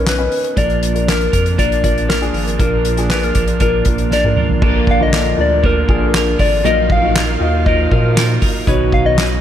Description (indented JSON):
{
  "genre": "piano-driven pop",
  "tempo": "118 BPM",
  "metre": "4/4",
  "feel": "straight",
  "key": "unclear",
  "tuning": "A4 = 440 Hz",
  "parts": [
    { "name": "soft struck synth lead", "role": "melody", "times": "0.0-9.4 s", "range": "Bb4 to F5", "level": "-18 LUFS", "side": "left 3 dB", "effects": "chorus" },
    { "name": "dark upright piano", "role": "accompaniment", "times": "0.0-9.4 s", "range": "Bb2 to Eb5", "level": "-22 LUFS", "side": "left 4 dB", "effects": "none" },
    { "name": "warm studio string section", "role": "sustained chords", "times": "0.0-9.4 s", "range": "D3 to F5", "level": "-29 LUFS", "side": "right 3 dB", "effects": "none" },
    { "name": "round analog bass", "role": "bass", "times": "0.0-9.4 s", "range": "Ab1 to Bb2", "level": "-19 LUFS", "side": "equal", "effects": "none" },
    { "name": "soft-mallet drum kit", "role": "drums", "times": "0.1-9.4 s", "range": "crash cymbal, handclaps, hi-hat, kick drum, ride cymbal, snare drum, toms", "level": "-18 LUFS", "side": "equal", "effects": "none" },
    { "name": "clean electric guitar", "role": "riff", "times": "0.6-9.4 s", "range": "Bb2 to B4", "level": "-21 LUFS", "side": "right 7 dB", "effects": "wide subtle chorus" },
    { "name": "mellow French horn section", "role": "second line", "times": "4.6-9.4 s", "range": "Bb2 to F#4", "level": "-26 LUFS", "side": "right 6 dB", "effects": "none" }
  ],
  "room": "studio ambience",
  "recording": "none",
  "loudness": "-12 LUFS",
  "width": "side -10 dB against mid",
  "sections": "0.0-4.6 A section; 4.6-9.4 B section",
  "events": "drum fill 4.1-4.6",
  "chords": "0.0 Badd9; 0.6 Bb; 6.6 Ebmadd9/Bb; 8.7 Badd9"
}